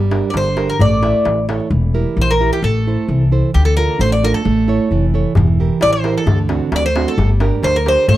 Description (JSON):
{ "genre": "greek folk, Greek bouzouki band", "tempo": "132 BPM", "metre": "2/4", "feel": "straight", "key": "D minor", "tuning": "A4 = 440 Hz", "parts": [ { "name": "nylon-string guitar", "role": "accompaniment", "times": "0.0-8.2 s", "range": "D3 to E5", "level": "-19 LUFS", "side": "right 5 dB", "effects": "none" }, { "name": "upright bass", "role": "bass", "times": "0.0-8.2 s", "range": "E1 to D2", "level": "-16 LUFS", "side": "left 1 dB", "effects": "none" }, { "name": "darbuka", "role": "percussion", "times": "0.0-1.7, 5.4-8.2 s", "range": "none", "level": "-19 LUFS", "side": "left 2 dB", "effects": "none" }, { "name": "Greek bouzouki", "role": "melody", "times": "0.3-8.2 s", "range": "G4 to D5", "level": "-17 LUFS", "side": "left 1 dB", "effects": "none" } ], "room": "small room ambience", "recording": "dry, close 1970s-style studio recording", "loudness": "-13 LUFS", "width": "side -14 dB against mid", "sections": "0.0-1.7 A section; 1.7-8.2 A section", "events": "none", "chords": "0.0 Gm; 0.8 A; 1.7 Edim; 2.6 Am; 3.5 Dm; 4.5 A; 5.4 Edim; 6.3 D7; 7.2 Gm", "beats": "0.35 | 0.80 1.26 | 1.72 2.17 | 2.63 3.09 | 3.54 4.00 | 4.46 4.91 | 5.37 5.82 | 6.28 6.73 | 7.18 7.64 | 8.09" }